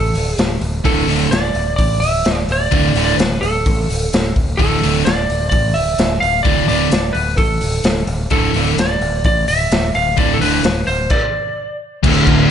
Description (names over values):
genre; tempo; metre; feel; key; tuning
hard rock; 129 BPM; 4/4; straight; D dorian; A4 = 440 Hz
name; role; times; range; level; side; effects
lightly driven lead guitar; melody; 0.0-11.8 s; A4 to F5; -19 LUFS; right 2 dB; analog delay
growling fingered electric bass; bass; 0.0-12.4 s; D1 to A1; -21 LUFS; equal; overdrive
raw garage drum kit; drums; 0.1-12.4 s; crash cymbal, hi-hat, kick drum, snare drum; -18 LUFS; left 1 dB; none
overdriven semi-hollow guitar; riff; 0.8-12.5 s; D2 to D3; -19 LUFS; right 10 dB; none
scooped high-gain guitar; riff; 0.8-12.5 s; D2 to D3; -19 LUFS; left 12 dB; distortion
warm analog pad; sustained chords; 12.0-12.5 s; none; barely audible; none; none
crunchy overdriven guitar; riff; 12.0-12.5 s; D2 to D3; -17 LUFS; left 1 dB; none
room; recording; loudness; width
light reverb, small room ambience; nothing above 10.6 kHz; -13 LUFS; side -9 dB against mid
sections
0.0-12.0 A section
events
stop 11.1-12.0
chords
0.0 D5